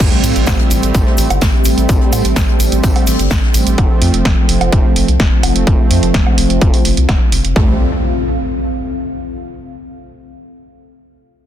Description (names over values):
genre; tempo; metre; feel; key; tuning
melodic techno; 127 BPM; 4/4; straight; A minor; A4 = 439 Hz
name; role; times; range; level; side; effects
deep dark ambient pad; sustained chords; 0.0-7.8 s; C4 to F5; -22 LUFS; left 1 dB; chorus, built-in reverb, sidechain pumping
brassy analog pad; stabs; 0.0-7.7 s; F3 to C4; -19 LUFS; right 4 dB; chorus, sidechain pumping, ping-pong delay
round analog bass; bass; 0.0-7.8 s; F1 to A2; -16 LUFS; equal; sidechain pumping
electronic kick drum; drums; 0.0-7.7 s; none; -13 LUFS; equal; distortion, overdrive
punchy analog drum machine; drums; 0.0-7.5 s; crash cymbal, hi-hat, snare drum, woodblock; -19 LUFS; right 2 dB; none
impact; sound effects; 0.0-1.9, 7.6-9.4 s; none; -22 LUFS; left 1 dB; none
jazz brush drum kit; drums; 0.1-3.7 s; hi-hat, snare drum, tambourine; -29 LUFS; left 3 dB; sidechain pumping on hats, high-pass filter on hats, high-pass filter on snare, sidechain pumping on perc, high-pass filter on perc, high-pass filter on room
egg shaker; percussion; 0.2-3.8 s; none; -26 LUFS; left 5 dB; none
analog pluck; arpeggios; 7.6-7.8 s; A3; -28 LUFS; right 1 dB; none
room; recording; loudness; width
studio reverb; dense, heavily limited modern master; -11 LUFS; side -11 dB against mid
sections
0.0-7.6 A section; 7.6-9.4 B section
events
impact 0.0-1.9; filter sweep on analog synth pad 0.0-7.6; filter sweep on ambient pad 0.0-7.6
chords
0.0 Am7; 3.8 F; 7.6 Am7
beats
| 0.00 0.47 0.95 1.42 | 1.89 2.36 2.84 3.31 | 3.78 4.25 4.72 5.20 | 5.67 6.14 6.62 7.09 | 7.56 8.03 8.51 8.98